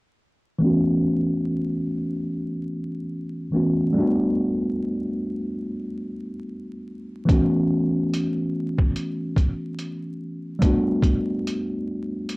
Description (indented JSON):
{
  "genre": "lo-fi hip hop",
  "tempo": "72 BPM",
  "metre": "4/4",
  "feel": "swing 61% on 16ths",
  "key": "A mixolydian",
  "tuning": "A4 = 441 Hz",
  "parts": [
    { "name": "mellow tine electric piano", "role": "accompaniment", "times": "0.6-12.4 s", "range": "E3 to F#4", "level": "-23 LUFS", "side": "equal", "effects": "medium stereo tremolo, cassette tape, low-pass filter" },
    { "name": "trip hop sampler-style drum kit", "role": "drums", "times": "7.3-12.4 s", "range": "hi-hat, kick drum", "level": "-20 LUFS", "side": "equal", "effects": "overdrive, vintage 12-bit sampler grit" }
  ],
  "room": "moderate studio ambience, RT60 0.5 s",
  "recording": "worn, warbling old tape, cassette tape, vinyl crackle, warbly pitch drift",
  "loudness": "-21 LUFS",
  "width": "side -25 dB against mid",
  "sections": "0.6-12.4 A section",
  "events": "filter sweep on tine electric piano 0.6-12.4",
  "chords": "0.6 A69; 4.0 Gmaj7; 7.3 A69; 10.6 Gmaj7"
}